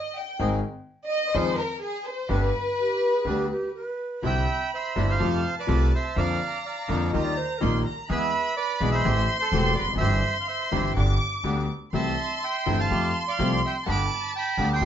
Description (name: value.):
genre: tango.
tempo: 125 BPM.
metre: 4/4.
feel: rubato.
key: C major from 4.2 s.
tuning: A4 = 436 Hz.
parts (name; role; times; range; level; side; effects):
warm studio violin section; second line; 0.0-14.8 s; Ab4 to D6; -29 LUFS; left 1 dB; none.
warm grand piano; accompaniment; 0.4-14.8 s; E1 to Ab4; -28 LUFS; left 3 dB; none.
bandoneon; stabs; 0.4-14.8 s; A3 to C5; -35 LUFS; right 4 dB; none.
upright bass; bass; 0.4-14.8 s; E1 to F2; -26 LUFS; right 1 dB; none.
breathy mellow concert flute; second line; 2.8-4.2, 7.1-8.0 s; G4 to Eb5; -31 LUFS; right 2 dB; none.
bandoneon; melody; 4.3-14.8 s; A4 to D6; -28 LUFS; right 4 dB; none.
room: wet studio reverb, RT60 0.6 s.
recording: band playing live in one room, nothing above 7.7 kHz.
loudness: -23 LUFS.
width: side -9 dB against mid.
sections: 0.0-4.2 A section; 4.2-14.8 B section.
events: violin section solo 0.0-4.2.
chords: 0.4 Ab; 1.3 Fm7; 2.3 G; 4.2 Cadd9; 5.2 Fadd9; 6.2 Bbadd9/F; 7.1 Ebadd9; 8.1 E; 9.0 Am7; 10.0 C/G; 11.0 G; 11.9 C6; 12.9 Fadd9; 13.9 G.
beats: | 0.39 0.87 1.34 1.82 | 2.30 2.78 3.26 3.75 | 4.24 4.73 5.21 5.70 | 6.18 6.66 7.14 7.62 | 8.09 8.57 9.04 9.52 | 9.99 10.47 10.95 11.44 | 11.93 12.41 12.89 13.38 | 13.85 14.33 14.80.